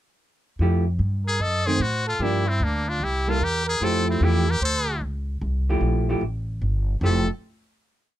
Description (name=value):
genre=jazz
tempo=149 BPM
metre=4/4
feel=swing 65% on 8ths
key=F major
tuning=A4 = 440 Hz
part: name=vintage hollow-body jazz guitar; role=accompaniment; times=0.6-7.3 s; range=D#3 to G4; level=-25 LUFS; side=right 1 dB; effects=none
part: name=upright bass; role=bass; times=0.6-7.3 s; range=F1 to A2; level=-23 LUFS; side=equal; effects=none
part: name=trumpet with metal mute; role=melody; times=1.3-7.3 s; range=Bb3 to A4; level=-26 LUFS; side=left 2 dB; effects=none
part: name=breathy trumpet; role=second line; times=1.3-7.3 s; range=C4 to D#5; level=-29 LUFS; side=right 2 dB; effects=none
room=little or no reverb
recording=close, detailed microphones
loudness=-21 LUFS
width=side -13 dB against mid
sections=0.6-7.0 A section; 7.0-8.2 final chord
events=none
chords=0.6 Fmaj9; 1.4 F#dim7; 2.2 Gm7; 3.0 C7; 3.8 Fmaj9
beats=| 0.60 1.00 1.40 1.80 | 2.20 2.61 3.01 3.41 | 3.81 4.21 4.62 5.02 | 5.42 5.82 6.22 6.62 | 7.03